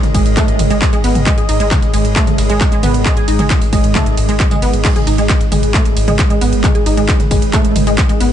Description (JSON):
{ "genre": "driving peak-time techno", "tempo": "134 BPM", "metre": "4/4", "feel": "straight", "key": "unclear", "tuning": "A4 = 440 Hz", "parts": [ { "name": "saturated sub bass", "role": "bass", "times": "0.0-8.3 s", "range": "G#1", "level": "-18 LUFS", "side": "equal", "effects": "tube saturation, sidechain pumping, low-pass filter" }, { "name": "metallic inharmonic drone", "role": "drone", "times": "0.0-8.3 s", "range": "G#2 to D#3", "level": "-23 LUFS", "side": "left 1 dB", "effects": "chorus, built-in reverb, sidechain pumping" }, { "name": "dusty soul sampler-style drum kit", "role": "drums", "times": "0.0-8.3 s", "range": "hi-hat, snare drum, tambourine", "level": "-32 LUFS", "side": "left 1 dB", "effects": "none" }, { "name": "techno drum kit", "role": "drums", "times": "0.0-8.3 s", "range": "crash cymbal, handclaps, hi-hat, ride cymbal, toms", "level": "-19 LUFS", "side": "equal", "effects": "none" }, { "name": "granular cloud pad", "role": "texture", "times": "0.0-8.3 s", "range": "G#3 to D#6", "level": "-21 LUFS", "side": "right 2 dB", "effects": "built-in reverb, sidechain pumping" }, { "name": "resonant blip pluck", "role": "riff", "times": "0.1-8.2 s", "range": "G#3 to G#4", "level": "-18 LUFS", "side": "right 2 dB", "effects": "chorus, overdrive, sidechain pumping, digital delay" }, { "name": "electronic kick drum", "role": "drums", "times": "0.1-8.1 s", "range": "none", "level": "-14 LUFS", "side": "equal", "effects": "none" } ], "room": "light reverb", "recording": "nothing above 10.4 kHz", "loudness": "-11 LUFS", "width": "side -10 dB against mid", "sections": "0.0-8.3 A section", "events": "none", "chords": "0.0 G#5" }